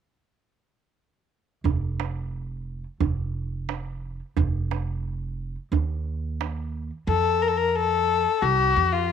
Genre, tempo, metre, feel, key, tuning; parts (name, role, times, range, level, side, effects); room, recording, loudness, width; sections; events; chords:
Persian modal ensemble; 89 BPM; 4/4; straight; F dastgah homayun; A4 = 439 Hz
upright bass; bass; 1.6-9.1 s; F1 to F2; -28 LUFS; right 2 dB
tombak; percussion; 1.7-6.6 s; -26 LUFS; right 7 dB
rich kamancheh; melody; 7.1-9.1 s; F4 to Bb4; -20 LUFS; left 8 dB
moderate spring reverb, RT60 1.3 s, studio reverb; 1960s-style stereo with parts hard left and right; -23 LUFS; side -8 dB against mid
1.7-7.1 A section; 7.1-9.1 B section